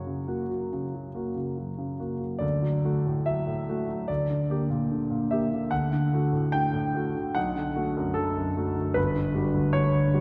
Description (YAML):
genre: classical, romantic character piece for solo piano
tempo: 69-77 BPM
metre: 4/4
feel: rubato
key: D major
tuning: A4 = 438 Hz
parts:
  - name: clear concert grand piano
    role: solo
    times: 0.0-10.2 s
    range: G1 to G5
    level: -27 LUFS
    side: equal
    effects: none
room: wet concert hall reverb, RT60 1.9 s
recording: none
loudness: -27 LUFS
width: mono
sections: 0.0-10.2 A section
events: none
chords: 0.0 F#; 2.4 D; 4.1 Gm/D; 5.7 D; 7.4 Bm7; 9.0 Gmaj7